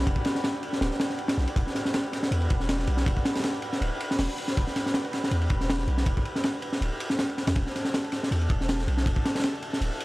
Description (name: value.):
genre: drum and bass, jungle.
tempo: 160 BPM.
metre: 4/4.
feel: straight.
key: E minor.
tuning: A4 = 440 Hz.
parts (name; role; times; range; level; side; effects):
lush unison pad; sustained chords; 0.0-10.0 s; D4 to B4; -36 LUFS; equal; chorus, vintage 12-bit sampler grit.
long sustained 808-style bass; bass; 0.0-9.9 s; D1 to E2; -27 LUFS; equal; none.
crunchy breakbeat drum kit; drums; 0.1-10.0 s; hi-hat, kick drum, ride cymbal, snare drum; -26 LUFS; equal; none.
room: small room ambience.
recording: dry, gritty hardware recording.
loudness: -24 LUFS.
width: side -20 dB against mid.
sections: 0.0-10.0 A section.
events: none.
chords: 0.0 Em11.